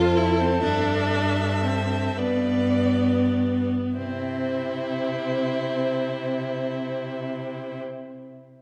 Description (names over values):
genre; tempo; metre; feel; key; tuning
classical, slow romantic movement for string quartet; 32-44 BPM (dotted quarters); 6/8; rubato; C major; A4 = 442 Hz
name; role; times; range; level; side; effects
rich violin; melody; 0.0-7.8 s; C5 to E5; -34 LUFS; equal; none
rich violin; second line; 0.0-7.8 s; E4 to B4; -33 LUFS; equal; none
rich viola; accompaniment; 0.0-7.8 s; B3 to F4; -28 LUFS; equal; none
clear cello; bass; 0.0-7.8 s; F2 to C3; -30 LUFS; equal; none
room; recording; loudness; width
wet scoring stage reverb, RT60 2.0 s; recorded in a church or concert hall; -25 LUFS; mono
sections
0.0-4.0 A section; 4.0-7.4 B section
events
slowing down 0.0-4.0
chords
0.0 F; 0.6 G5; 2.2 G; 4.0 C